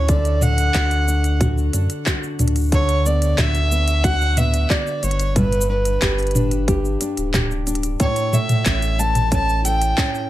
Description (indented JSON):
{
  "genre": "folktronica",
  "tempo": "91 BPM",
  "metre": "4/4",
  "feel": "straight",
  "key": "unclear",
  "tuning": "A4 = 440 Hz",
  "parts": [
    { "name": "dark violin", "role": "melody", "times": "0.0-10.3 s", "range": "B4 to A5", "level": "-23 LUFS", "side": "right 1 dB", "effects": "plate reverb, ping-pong delay" },
    { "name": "nylon-string guitar", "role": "arpeggios", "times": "0.0-10.3 s", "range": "G2 to A4", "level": "-24 LUFS", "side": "equal", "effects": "plate reverb, ping-pong delay" },
    { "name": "warm sub bass", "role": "bass", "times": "0.0-9.9 s", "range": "D1 to F#2", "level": "-20 LUFS", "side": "equal", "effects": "tube saturation" },
    { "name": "electronic kick drum", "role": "drums", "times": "0.1-10.1 s", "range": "none", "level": "-22 LUFS", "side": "equal", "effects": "overdrive" },
    { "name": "organic electronic drum kit", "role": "drums", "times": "0.1-10.3 s", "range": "handclaps, hi-hat, shaker, toms", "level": "-23 LUFS", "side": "equal", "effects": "overdrive" }
  ],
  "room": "light reverb",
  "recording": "none",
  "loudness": "-16 LUFS",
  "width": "side -14 dB against mid",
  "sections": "0.0-8.0 A section; 8.0-10.3 B section",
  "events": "none",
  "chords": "0.1 D; 2.7 Bm/D; 5.4 G; 8.0 A",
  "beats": "| 0.09 0.75 1.41 2.07 | 2.73 3.39 4.05 4.71 | 5.36 6.02 6.68 7.34 | 8.00 8.66 9.32 9.98"
}